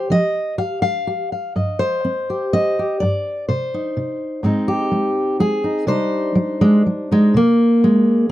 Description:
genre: folk, solo fingerstyle acoustic guitar.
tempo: 124 BPM.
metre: 3/4.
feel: rubato.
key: C minor.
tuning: A4 = 440 Hz.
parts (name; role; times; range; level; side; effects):
fingerpicked steel-string acoustic guitar; solo; 0.0-8.3 s; G2 to F5; -16 LUFS; equal; none.
room: little or no reverb.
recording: dry, close 1970s-style studio recording.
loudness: -16 LUFS.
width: side -14 dB against mid.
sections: 0.0-7.4 A section.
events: none.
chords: 0.0 Fsus2; 1.6 Cm/G; 4.5 Ab; 5.9 Cmadd9; 7.4 Abadd9/C.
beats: | 0.11 0.59 1.08 | 1.57 2.06 2.54 | 3.02 3.50 3.98 | 4.45 4.93 5.40 | 5.89 6.37 6.87 | 7.36 7.84 8.31.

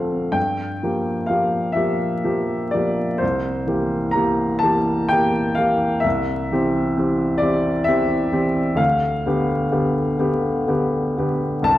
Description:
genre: classical, romantic nocturne for solo piano.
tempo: 42 BPM (dotted quarters).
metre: 6/8.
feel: uneven beats, rubato.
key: unclear.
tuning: A4 = 440 Hz.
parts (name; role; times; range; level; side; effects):
warm baby grand piano; solo; 0.0-11.8 s; C2 to Bb5; -18 LUFS; equal; none.
room: wet recital hall reverb, RT60 1.4 s.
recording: vinyl crackle.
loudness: -18 LUFS.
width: side -14 dB against mid.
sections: 0.0-11.8 A section.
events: none.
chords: 0.4 Gm7; 3.2 C7; 6.0 C; 8.8 G7/D.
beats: | 0.36 1.78 | 3.22 4.64 | 6.05 7.43 | 8.79 10.19 | 11.66.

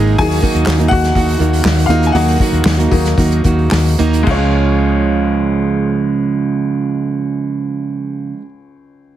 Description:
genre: piano-driven pop.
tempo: 106-125 BPM.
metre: 4/4.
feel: straight.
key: Db major.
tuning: A4 = 442 Hz.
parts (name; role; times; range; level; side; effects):
bright upright piano; accompaniment; 0.0-9.2 s; Db2 to Ab5; -20 LUFS; left 4 dB; none.
fingerpicked plugged-in steel-string acoustic guitar; riff; 0.0-8.5 s; Db3 to Ab4; -16 LUFS; right 5 dB; none.
vintage muted fingered electric bass; bass; 0.0-8.3 s; Ab1 to Eb2; -15 LUFS; left 1 dB; none.
unplugged drum kit; drums; 0.1-4.4 s; crash cymbal, handclaps, hi-hat, kick drum, snare drum; -18 LUFS; left 1 dB; none.
room: light reverb.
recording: heavily compressed radio sound, multiband compression.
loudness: -12 LUFS.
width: side -12 dB against mid.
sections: 0.0-4.3 A section; 4.3-8.8 B section.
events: upright piano solo 0.0-4.3; slowing down 0.2-4.3.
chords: 0.2 Ebm; 4.3 Db.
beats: | 0.19 0.67 1.16 1.65 | 2.15 2.66 3.18 3.72 | 4.27 4.84 5.40 5.96 | 6.53 7.09 7.66 8.22.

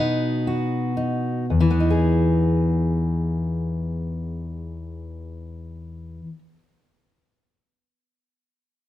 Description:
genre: folk, solo fingerstyle acoustic guitar.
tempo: free time.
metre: none.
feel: none.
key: E major.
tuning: A4 = 440 Hz.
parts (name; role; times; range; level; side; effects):
fingerpicked steel-string acoustic guitar; solo; 0.0-6.6 s; E2 to G#4; -21 LUFS; left 1 dB; none.
room: light reverb.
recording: none.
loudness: -20 LUFS.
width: side -13 dB against mid.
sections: 0.0-1.5 A section; 1.5-8.2 B section.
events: slowing down 0.0-1.5.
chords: 0.0 B; 1.5 Emaj7.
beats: free time.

